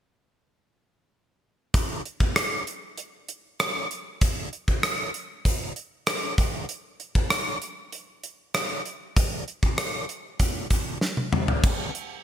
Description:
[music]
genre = pop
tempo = 97 BPM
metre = 4/4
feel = straight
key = none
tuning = none
[part]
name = gated 80s drum kit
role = drums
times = 1.7-12.1 s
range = crash cymbal, hi-hat, kick drum, rim click, snare drum, toms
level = -24 LUFS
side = equal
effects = gated reverb
[sound]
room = light reverb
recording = bright 1980s-style digital production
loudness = -24 LUFS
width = side -10 dB against mid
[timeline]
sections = 1.7-11.6 A section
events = drum fill 11.0-11.6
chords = none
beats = | 1.74 2.36 2.98 3.60 | 4.22 4.83 5.45 6.07 | 6.69 7.31 7.93 8.55 | 9.16 9.78 10.40 11.02 | 11.64

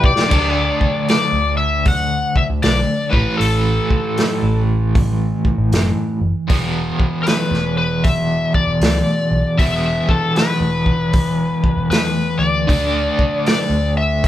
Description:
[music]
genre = blues rock power trio and southern rock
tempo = 78 BPM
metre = 4/4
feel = swing 64% on 8ths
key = unclear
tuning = A4 = 437 Hz
[part]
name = overdriven slide guitar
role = melody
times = 0.0-14.3 s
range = A4 to F#5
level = -20 LUFS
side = left 3 dB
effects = none
[part]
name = vintage muted picked electric bass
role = bass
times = 0.0-14.3 s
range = E1 to E2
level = -21 LUFS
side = equal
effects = none
[part]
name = vintage drum kit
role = drums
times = 0.0-14.3 s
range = crash cymbal, hi-hat, kick drum, snare drum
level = -18 LUFS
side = equal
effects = none
[part]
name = overdriven semi-hollow guitar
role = riff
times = 0.3-14.3 s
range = E2 to D4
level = -20 LUFS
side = equal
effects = tremolo
[sound]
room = light reverb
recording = band playing live in one room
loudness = -15 LUFS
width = side -12 dB against mid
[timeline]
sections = 0.3-14.3 A section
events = drum fill 0.0-0.3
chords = 0.3 D5; 3.0 A5; 6.5 E5; 12.7 D5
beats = | 0.32 1.09 1.86 2.63 | 3.40 4.17 4.95 5.72 | 6.50 7.27 8.04 8.82 | 9.59 10.36 11.14 11.91 | 12.69 13.46 14.23

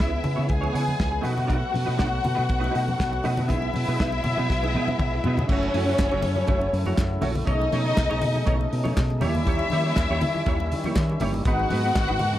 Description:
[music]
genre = disco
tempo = 120 BPM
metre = 4/4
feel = straight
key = F# dorian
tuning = A4 = 445 Hz
[part]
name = dark studio string section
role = second line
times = 0.0-12.4 s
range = C#4 to G#5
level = -27 LUFS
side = left 2 dB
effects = none
[part]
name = semi-hollow electric guitar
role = accompaniment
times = 0.0-12.4 s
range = A3 to C#5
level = -31 LUFS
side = right 4 dB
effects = ensemble chorus
[part]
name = overdriven tonewheel organ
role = sustained chords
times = 0.0-12.4 s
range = C#3 to F#4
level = -32 LUFS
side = left 1 dB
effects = wide subtle chorus
[part]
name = fingered electric bass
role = bass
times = 0.0-12.4 s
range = F#1 to D#3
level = -26 LUFS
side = equal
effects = none
[part]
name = warm soul drum kit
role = drums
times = 0.0-12.3 s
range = crash cymbal, hi-hat, kick drum, snare drum, toms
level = -27 LUFS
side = equal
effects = none
[part]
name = congas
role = percussion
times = 0.0-12.4 s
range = none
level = -34 LUFS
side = left 3 dB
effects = none
[part]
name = group handclap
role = percussion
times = 6.0-12.1 s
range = none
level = -39 LUFS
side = left 3 dB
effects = none
[sound]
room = light reverb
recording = dark, warm production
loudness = -21 LUFS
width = side -13 dB against mid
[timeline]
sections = 0.0-5.5 A section; 5.5-12.4 B section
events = drum fill 4.5-5.5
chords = 0.0 C#m7; 1.2 B7; 3.5 Emaj7/B; 5.5 F#m7; 7.5 B13; 9.2 D#7b9; 11.5 G#m7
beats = 0.00 0.50 0.99 | 1.49 1.99 2.49 2.99 | 3.49 3.99 4.49 4.99 | 5.49 5.98 6.48 6.98 | 7.48 7.97 8.47 8.97 | 9.47 9.97 10.46 10.96 | 11.46 11.96

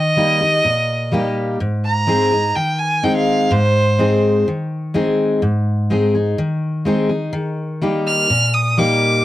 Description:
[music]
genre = country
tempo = 125 BPM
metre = 4/4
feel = straight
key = unclear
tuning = A4 = 440 Hz
[part]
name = clear fiddle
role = melody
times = 0.0-4.4, 8.1-9.2 s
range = C5 to F6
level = -17 LUFS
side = right 2 dB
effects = none
[part]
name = picked steel-string acoustic guitar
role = accompaniment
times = 0.0-9.2 s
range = Ab2 to Ab4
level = -17 LUFS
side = left 1 dB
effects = none
[sound]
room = light reverb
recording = dry, close 1970s-style studio recording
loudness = -15 LUFS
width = side -14 dB against mid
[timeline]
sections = 0.0-5.4 A section; 5.4-7.3 B section; 7.3-9.2 C section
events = fiddle solo 0.0-5.4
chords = 0.0 Eb; 1.6 Ab; 7.3 Eb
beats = 0.17 0.65 1.12 | 1.60 2.08 2.56 3.04 | 3.52 4.00 4.47 4.95 | 5.43 5.91 6.39 6.87 | 7.34 7.82 8.30 8.78

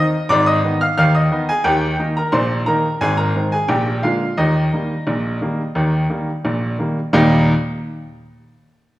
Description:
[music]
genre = ragtime piano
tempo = 88 BPM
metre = 2/4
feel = straight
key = Eb major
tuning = A4 = 441 Hz
[part]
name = clear baby grand piano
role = solo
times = 0.0-7.5 s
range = Ab1 to F6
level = -15 LUFS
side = equal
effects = none
[sound]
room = wet recital hall reverb, RT60 1.5 s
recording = recorded in a church or concert hall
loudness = -15 LUFS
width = side -16 dB against mid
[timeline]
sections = 0.0-7.1 A section; 7.1-8.5 B section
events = none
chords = 0.3 Abm; 1.6 Eb; 3.0 Ab; 3.7 Bb7; 4.4 Eb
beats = | 0.29 0.97 | 1.65 2.33 | 3.01 3.69 | 4.38 5.07 | 5.76 6.45 | 7.13

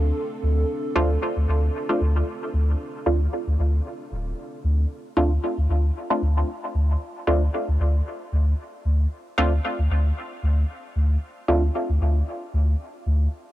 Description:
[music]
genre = dub techno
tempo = 114 BPM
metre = 4/4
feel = swing 56% on 16ths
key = D minor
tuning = A4 = 440 Hz
[part]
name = dark analog pad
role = sustained chords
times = 0.0-4.9 s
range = C4 to A4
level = -32 LUFS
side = right 2 dB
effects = chorus
[part]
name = soft dub sub bass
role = bass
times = 0.0-13.3 s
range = D1 to D2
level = -20 LUFS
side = equal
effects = none
[part]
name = filtered dub chord stab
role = stabs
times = 1.0-11.6 s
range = A3 to F4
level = -27 LUFS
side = equal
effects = chorus, phaser, dub echo
[sound]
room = little or no reverb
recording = dry, gritty hardware recording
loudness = -21 LUFS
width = side -15 dB against mid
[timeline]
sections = 0.0-4.9 A section; 4.9-13.5 A section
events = none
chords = 0.0 D7(no3); 4.9 N.C.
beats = 0.17 | 0.69 1.22 1.75 2.27 | 2.80 3.33 3.85 4.38 | 4.90 5.43 5.96 6.48 | 7.01 7.54 8.06 8.59 | 9.12 9.64 10.17 10.69 | 11.22 11.75 12.27 12.80

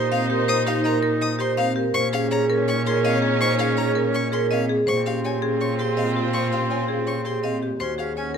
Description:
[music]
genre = classical, minimalist pattern music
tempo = 164 BPM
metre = 4/4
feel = straight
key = unclear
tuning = A4 = 440 Hz
[part]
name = marimba with medium hard mallets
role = melody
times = 0.0-8.4 s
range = G4 to F5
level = -26 LUFS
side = left 9 dB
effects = none
[part]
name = warm oboe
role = second line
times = 0.0-8.3 s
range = C4 to Eb4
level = -30 LUFS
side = right 2 dB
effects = none
[part]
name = warm symphonic string section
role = sustained chords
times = 0.0-8.4 s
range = Eb4 to Db5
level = -31 LUFS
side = left 2 dB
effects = none
[part]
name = rich violin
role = arpeggios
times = 0.0-8.3 s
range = F5 to Eb6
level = -29 LUFS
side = left 4 dB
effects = none
[part]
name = vibraphone with medium mallets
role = arpeggios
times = 0.0-8.4 s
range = C4 to C5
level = -25 LUFS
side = right 6 dB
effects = none
[part]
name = rich cello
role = bass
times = 0.0-8.4 s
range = Eb2 to Bb2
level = -26 LUFS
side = right 4 dB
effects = none
[sound]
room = moderate recital hall reverb, RT60 1.5 s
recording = close, detailed microphones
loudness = -20 LUFS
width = side -7 dB against mid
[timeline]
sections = 0.0-7.8 A section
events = none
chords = 0.0 Cm7/Bb; 2.0 Eb9sus4/Bb; 4.9 Dbmaj7/Bb; 7.8 Ebm11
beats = 0.12 | 0.49 0.85 1.22 1.58 | 1.95 2.32 2.68 3.05 | 3.42 3.78 4.15 4.51 | 4.88 5.24 5.61 5.98 | 6.34 6.71 7.07 7.44 | 7.80 8.17

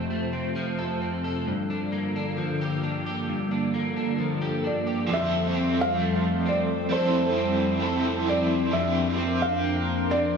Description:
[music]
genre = dream pop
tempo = 66 BPM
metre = 4/4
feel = straight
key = F major from 5.1 s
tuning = A4 = 441 Hz
[part]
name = hollow soft pad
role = sustained chords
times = 0.0-10.4 s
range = F2 to C5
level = -28 LUFS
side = equal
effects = ensemble chorus
[part]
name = electric guitar at the edge of break-up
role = arpeggios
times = 0.0-10.4 s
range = F2 to A4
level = -28 LUFS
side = left 1 dB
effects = analog chorus, analog delay
[part]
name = felt-muted upright piano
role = melody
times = 4.7-10.4 s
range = C5 to F5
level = -28 LUFS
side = right 1 dB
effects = analog delay
[part]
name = raw garage guitar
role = accompaniment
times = 5.1-10.4 s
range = F3 to C5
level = -29 LUFS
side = right 5 dB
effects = overdrive, tremolo, wide subtle chorus, analog delay
[sound]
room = wet echo chamber reverb, RT60 1.7 s, digital ambience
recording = echo-heavy mix, studio reverb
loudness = -23 LUFS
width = side -6 dB against mid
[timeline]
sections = 0.0-5.1 A section; 5.1-10.4 B section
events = none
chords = 0.0 F; 1.5 Gm7; 5.1 Fmaj7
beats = 0.55 | 1.46 2.37 3.27 4.18 | 5.09 6.00 6.91 7.82 | 8.73 9.64

